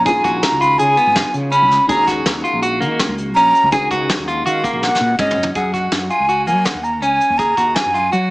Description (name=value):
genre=progressive instrumental, band music in an uneven meter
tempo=164 BPM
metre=5/4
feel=straight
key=F# major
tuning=A4 = 441 Hz
part: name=breathy jazz flute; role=melody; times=0.0-8.3 s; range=D#5 to B5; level=-15 LUFS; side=equal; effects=tape echo
part: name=dark grand piano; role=accompaniment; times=0.0-5.5 s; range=D#3 to F#4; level=-26 LUFS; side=left 2 dB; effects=none
part: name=clean electric guitar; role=arpeggios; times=0.0-8.3 s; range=A#3 to G#4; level=-20 LUFS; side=equal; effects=tape echo
part: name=mellow fretless electric bass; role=bass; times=0.0-8.3 s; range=G#1 to F#3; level=-23 LUFS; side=equal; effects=none
part: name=soft brush drum kit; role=drums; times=0.1-8.2 s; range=hi-hat, kick drum, snare drum, toms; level=-21 LUFS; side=equal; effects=none
room=moderate studio reverb, RT60 0.6 s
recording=heavily compressed radio sound, multiband compression, small speaker sound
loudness=-13 LUFS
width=side -21 dB against mid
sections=0.0-5.6 A section; 5.6-8.3 B section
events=flute solo 0.0-5.6; drum fill 4.8-5.6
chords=0.0 C#; 1.9 D#m; 5.6 F#add9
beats=| 0.06 0.43 0.79 1.16 1.53 | 1.89 2.26 2.62 2.99 3.36 | 3.72 4.09 4.46 4.82 5.19 | 5.56 5.92 6.29 6.66 7.03 | 7.39 7.76 8.12